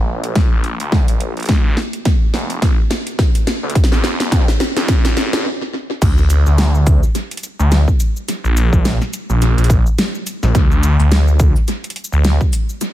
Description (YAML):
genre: glitch hop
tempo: 106 BPM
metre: 4/4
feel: swing 58% on 16ths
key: unclear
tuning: A4 = 436 Hz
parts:
  - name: phased detuned saw bass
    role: bass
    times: 0.0-12.4 s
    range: Eb1 to F2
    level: -15 LUFS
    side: equal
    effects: phaser, overdrive, high-pass filter
  - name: dubstep drum kit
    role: drums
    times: 0.2-12.9 s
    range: crash cymbal, hi-hat, shaker, snare drum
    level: -20 LUFS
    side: equal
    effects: tape echo
  - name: electronic kick drum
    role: drums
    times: 0.4-12.5 s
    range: none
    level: -14 LUFS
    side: equal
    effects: none
room: little or no reverb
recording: echo-heavy mix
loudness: -13 LUFS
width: side -14 dB against mid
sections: 0.0-6.0 A section; 6.0-12.9 B section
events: build-up 0.0-6.0; drum fill 0.0-5.5; stop 5.5-6.0; drop 6.0-12.9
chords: none